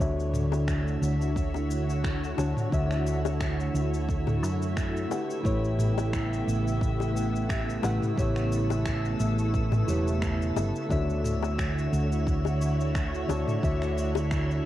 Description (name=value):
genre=sunset chillout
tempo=88 BPM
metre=4/4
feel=swing 55% on 16ths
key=D major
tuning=A4 = 438 Hz
part: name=nylon-string guitar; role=accompaniment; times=0.0-14.7 s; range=D3 to A5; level=-32 LUFS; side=equal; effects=auto-pan, low-pass filter, analog delay
part: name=soft string machine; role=sustained chords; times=0.0-14.7 s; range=C#3 to C#5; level=-32 LUFS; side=equal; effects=ensemble chorus
part: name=hollow-body short-scale fingered electric bass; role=bass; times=0.0-14.6 s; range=E1 to F#2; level=-28 LUFS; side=equal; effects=none
part: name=electronic kick drum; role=drums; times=0.0-14.5 s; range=none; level=-31 LUFS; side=equal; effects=overdrive, cassette tape
part: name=smooth R&B drum kit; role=drums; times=0.0-14.6 s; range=finger snaps, shaker, toms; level=-35 LUFS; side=equal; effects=cassette tape
part: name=drifting glass-harmonics texture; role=texture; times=0.3-14.7 s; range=E5 to E6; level=-40 LUFS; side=right 1 dB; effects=chorus, built-in reverb
part: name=bongos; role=percussion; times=0.5-14.3 s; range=none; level=-34 LUFS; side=left 13 dB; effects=none
room=light reverb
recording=home recording on cassette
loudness=-25 LUFS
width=side -13 dB against mid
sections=0.0-14.7 A section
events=none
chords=0.0 Dmaj9; 5.1 A9; 10.9 Dmaj9